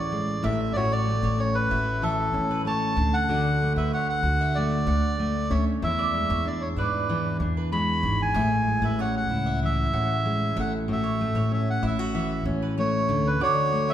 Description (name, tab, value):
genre	acoustic pop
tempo	95 BPM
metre	4/4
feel	straight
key	unclear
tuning	A4 = 440 Hz
part	melodica	melody	0.0-13.9 s	A4 to B5	-27 LUFS	right 1 dB	none
part	fingerpicked steel-string acoustic guitar	accompaniment	0.0-13.9 s	E2 to G#4	-26 LUFS	left 1 dB	none
part	upright bass	bass	0.0-13.4 s	G#1 to G#2	-29 LUFS	equal	none
part	mandolin	arpeggios	0.4-13.9 s	B4 to F#5	-34 LUFS	right 5 dB	none
room	wet recital hall reverb, RT60 1.6 s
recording	recorded in a church or concert hall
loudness	-22 LUFS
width	side -11 dB against mid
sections	0.0-13.9 A section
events	none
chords	0.4 F#m7/A; 3.0 Dmaj7; 5.8 E7; 8.4 Amaj7; 10.6 F#m7/A; 13.1 Dmaj7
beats	0.13 | 0.76 1.39 2.03 2.66 | 3.29 3.93 4.56 5.19 | 5.83 6.46 7.09 7.72 | 8.36 8.99 9.62 10.26 | 10.89 11.52 12.15 12.79 | 13.42